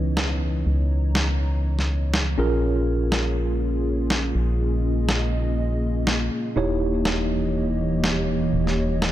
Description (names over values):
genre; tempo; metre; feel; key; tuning
deep house; 122 BPM; 4/4; swing 58% on 16ths; unclear; A4 = 440 Hz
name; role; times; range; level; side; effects
dark analog pad; sustained chords; 0.0-9.1 s; E3 to A#5; -27 LUFS; equal; chorus
mellow tine electric piano; stabs; 0.0-9.1 s; C#4 to C#5; -28 LUFS; right 1 dB; medium stereo tremolo, low-pass filter, digital delay
organ-like FM bass; bass; 0.0-9.1 s; D#1 to C#2; -24 LUFS; equal; none
electronic snare drum; drums; 0.2-9.1 s; none; -26 LUFS; equal; none
room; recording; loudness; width
light reverb, digital ambience; none; -20 LUFS; side -13 dB against mid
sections
0.0-9.1 A section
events
filter sweep on tine electric piano 0.0-9.1; filter sweep on analog synth pad 0.0-9.1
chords
0.0 C#m9; 2.4 A#m7; 6.6 D#7b9